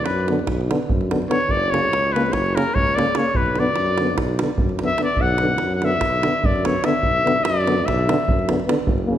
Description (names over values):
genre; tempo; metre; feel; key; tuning
balkan folk, Balkan brass band; 293 BPM (eighths); 9/8; straight; B harmonic minor; A4 = 441 Hz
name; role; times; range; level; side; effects
warm trumpet; melody; 0.0-8.5 s; A#4 to F#5; -21 LUFS; left 2 dB; none
clear tuba; bass; 0.0-9.2 s; F#1 to F#2; -24 LUFS; equal; none
davul; percussion; 0.1-9.0 s; none; -24 LUFS; right 1 dB; none
warm euphonium; accompaniment; 0.3-9.1 s; A#3 to B3; -26 LUFS; left 3 dB; none
warm euphonium; accompaniment; 0.3-9.2 s; C#3 to D3; -27 LUFS; right 4 dB; none
room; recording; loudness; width
wet scoring stage reverb, RT60 1.6 s; recorded in a church or concert hall; -17 LUFS; side -11 dB against mid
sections
0.0-9.2 A section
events
trumpet solo 0.0-9.2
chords
0.0 Bm; 1.5 F#; 3.4 Bm